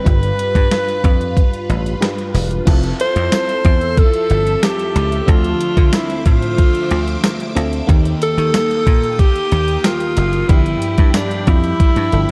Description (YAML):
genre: 1980s-style pop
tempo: 92 BPM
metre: 4/4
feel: straight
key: unclear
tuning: A4 = 442 Hz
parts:
  - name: bright alto saxophone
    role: melody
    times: 0.0-12.3 s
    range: D4 to C5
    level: -21 LUFS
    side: equal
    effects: digital delay
  - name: FM electric piano with soft pad layer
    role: accompaniment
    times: 0.0-12.3 s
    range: G2 to B4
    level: -27 LUFS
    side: equal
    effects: chorus
  - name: phased string machine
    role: sustained chords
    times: 0.0-12.3 s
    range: G3 to E6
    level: -30 LUFS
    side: equal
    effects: ensemble chorus, phaser
  - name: dry thumbed slap bass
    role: bass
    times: 0.1-12.2 s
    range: E1 to Eb3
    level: -21 LUFS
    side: equal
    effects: none
  - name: clean 12-bit digital drum machine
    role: drums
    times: 0.1-12.3 s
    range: crash cymbal, hi-hat, kick drum, snare drum, tambourine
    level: -17 LUFS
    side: equal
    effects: overdrive
  - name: crunchy overdriven guitar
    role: accompaniment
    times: 2.7-12.3 s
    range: D3 to G4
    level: -32 LUFS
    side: equal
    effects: none
room: light reverb, digital ambience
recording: dark, warm production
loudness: -15 LUFS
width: mono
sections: 0.0-2.7 A section; 2.7-12.3 B section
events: none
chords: 0.1 G7; 2.7 Fmaj7; 5.3 Dm7; 7.9 Eb; 10.5 G7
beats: | 0.06 0.71 1.36 2.02 | 2.67 3.32 3.97 4.63 | 5.28 5.93 6.58 7.24 | 7.89 8.54 9.19 9.84 | 10.50 11.15 11.80